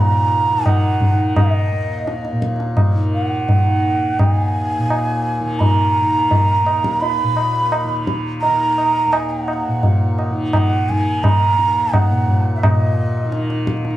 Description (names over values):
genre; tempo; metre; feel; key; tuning
indian classical, Hindustani; 85 BPM; 4/4; straight; Eb raga bhairavi; A4 = 441 Hz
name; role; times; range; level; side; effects
breathy bansuri; melody; 0.0-13.7 s; Eb5 to Cb6; -19 LUFS; right 2 dB; tape echo
tanpura; drone; 0.0-14.0 s; Eb2 to Eb3; -22 LUFS; equal; none
tabla; percussion; 0.7-14.0 s; none; -18 LUFS; equal; none
room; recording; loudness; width
light reverb; dry, gritty hardware recording, vinyl crackle, small room ambience; -15 LUFS; side -14 dB against mid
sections
0.0-12.6 A section; 12.6-14.0 B section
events
none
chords
none